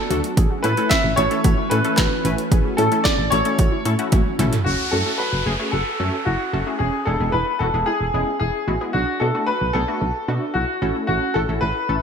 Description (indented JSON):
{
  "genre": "synth-pop",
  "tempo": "112 BPM",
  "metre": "4/4",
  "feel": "straight",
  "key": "unclear",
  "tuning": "A4 = 440 Hz",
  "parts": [
    { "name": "clear baby grand piano", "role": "melody", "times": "0.0-12.0 s", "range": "F#4 to E5", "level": "-22 LUFS", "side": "left 1 dB", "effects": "lush chorus, ping-pong delay" },
    { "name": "soft string machine", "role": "sustained chords", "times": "0.0-4.6 s", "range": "E3 to D4", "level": "-27 LUFS", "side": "right 1 dB", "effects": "ensemble chorus" },
    { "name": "warbly dusty pluck", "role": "arpeggios", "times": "0.0-11.8 s", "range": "C#4 to G#4", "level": "-30 LUFS", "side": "right 2 dB", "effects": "chorus, ping-pong delay" },
    { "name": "funky polysynth comp", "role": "accompaniment", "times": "0.1-12.0 s", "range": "G#3 to B4", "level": "-27 LUFS", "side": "left 2 dB", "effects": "chorus" },
    { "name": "solid FM bass", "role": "bass", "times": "0.1-12.0 s", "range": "E1 to B2", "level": "-23 LUFS", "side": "equal", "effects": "none" },
    { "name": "80s electronic pad drums", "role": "drums", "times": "0.1-4.7 s", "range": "handclaps, hi-hat, kick drum, snare drum, toms", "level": "-20 LUFS", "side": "equal", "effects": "gated reverb on snare and toms, gated reverb" },
    { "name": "downlifter", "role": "sound effects", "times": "4.7-8.9 s", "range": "none", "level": "-29 LUFS", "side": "equal", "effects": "none" }
  ],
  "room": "moderate lush hall reverb, RT60 2.1 s",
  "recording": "bright 1980s-style digital production",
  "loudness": "-18 LUFS",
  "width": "side -7 dB against mid",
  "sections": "0.0-4.7 A section; 4.7-12.0 B section",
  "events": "drum fill 4.1-4.7",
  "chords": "0.4 A; 4.7 F#m; 6.8 E; 8.9 Bm7; 10.8 A",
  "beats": "| 0.37 0.91 1.45 1.98 | 2.52 3.05 3.59 4.12 | 4.66 5.20 5.73 6.27 | 6.80 7.34 7.87 8.41 | 8.95 9.48 10.02 10.55 | 11.09 11.62"
}